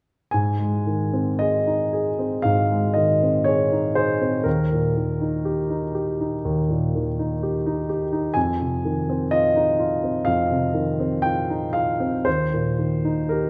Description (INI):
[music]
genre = classical, romantic nocturne for solo piano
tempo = 60 BPM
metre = 4/4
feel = uneven beats, rubato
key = Ab major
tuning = A4 = 440 Hz
[part]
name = warm baby grand piano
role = solo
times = 0.3-13.5 s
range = Eb2 to Ab5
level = -22 LUFS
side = equal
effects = none
[sound]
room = moderate recital hall reverb, RT60 1.6 s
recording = none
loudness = -22 LUFS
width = mono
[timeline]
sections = 0.3-13.5 A section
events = none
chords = 0.3 Ab; 4.5 Eb; 8.4 Fm7; 12.3 Eb